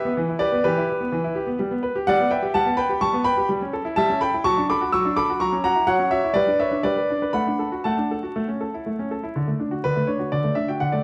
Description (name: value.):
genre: classical-period piano sonatina.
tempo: 125 BPM.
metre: 4/4.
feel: straight.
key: D major.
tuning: A4 = 440 Hz.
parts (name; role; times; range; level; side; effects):
clear grand piano; solo; 0.0-11.0 s; D3 to E6; -22 LUFS; equal; none.
room: wet recital hall reverb, RT60 1.5 s.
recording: dark, warm production, vinyl crackle.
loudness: -22 LUFS.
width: mono.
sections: 0.0-9.4 A section; 9.4-11.0 B section.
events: none.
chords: 0.0 Em; 1.6 G; 3.5 A7/G; 4.4 D/F#; 5.4 F#7; 6.4 G; 7.3 D/A; 8.4 A; 9.4 D.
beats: 0.17 0.64 1.11 | 1.58 2.06 2.53 3.01 | 3.49 3.97 4.45 4.93 | 5.40 5.88 6.36 6.85 | 7.35 7.85 8.36 8.86 | 9.35 9.84 10.32 10.80.